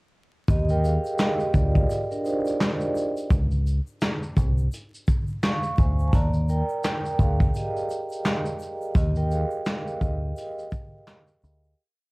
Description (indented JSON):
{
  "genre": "lo-fi hip hop",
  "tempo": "85 BPM",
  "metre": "4/4",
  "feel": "swing 59% on 16ths",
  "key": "Eb major",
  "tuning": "A4 = 440 Hz",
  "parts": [
    { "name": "vibraphone with soft mallets", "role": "accompaniment", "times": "0.5-11.8 s", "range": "D4 to Db6", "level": "-28 LUFS", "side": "right 1 dB", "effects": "cassette tape, low-pass filter" },
    { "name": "deep dub picked electric bass", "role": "bass", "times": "0.5-11.7 s", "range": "C2 to Eb2", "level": "-23 LUFS", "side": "equal", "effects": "none" },
    { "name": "vintage brush drum kit", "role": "drums", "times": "0.5-11.6 s", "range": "handclaps, hi-hat, kick drum, shaker, snare drum", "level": "-24 LUFS", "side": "equal", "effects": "vintage 12-bit sampler grit" },
    { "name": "egg shaker", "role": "percussion", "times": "0.5-11.8 s", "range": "none", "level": "-57 LUFS", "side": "left 6 dB", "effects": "none" }
  ],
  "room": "light reverb",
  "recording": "dark, warm production, vinyl crackle",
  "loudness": "-22 LUFS",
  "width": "side -24 dB against mid",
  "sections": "0.5-11.8 A section",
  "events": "vibraphone solo 0.5-11.8; fade-out 9.0-11.8",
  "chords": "0.5 Ebmaj9; 3.3 Dbmaj7; 6.1 Ebmaj7"
}